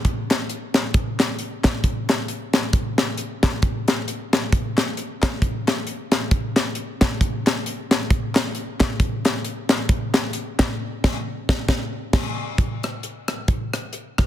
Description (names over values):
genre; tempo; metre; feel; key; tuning
gospel; 134 BPM; 4/4; swing 56% on 8ths; none; none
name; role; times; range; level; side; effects
crisp fusion drum kit; drums; 0.0-14.3 s; crash cymbal, hi-hat, kick drum, rim click, snare drum; -20 LUFS; equal; none
group handclap; percussion; 0.3-10.7 s; none; -32 LUFS; left 4 dB; none
room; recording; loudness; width
light reverb; dense, heavily limited modern master; -20 LUFS; side -12 dB against mid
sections
0.0-12.6 A section; 12.6-14.3 B section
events
band accent 10.8-12.6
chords
none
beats
| 0.06 0.50 0.95 1.40 | 1.84 2.29 2.74 3.19 | 3.63 4.08 4.53 4.97 | 5.42 5.87 6.32 6.77 | 7.21 7.66 8.11 8.55 | 9.00 9.45 9.90 10.34 | 10.79 11.24 11.69 12.13 | 12.58 13.03 13.48 13.93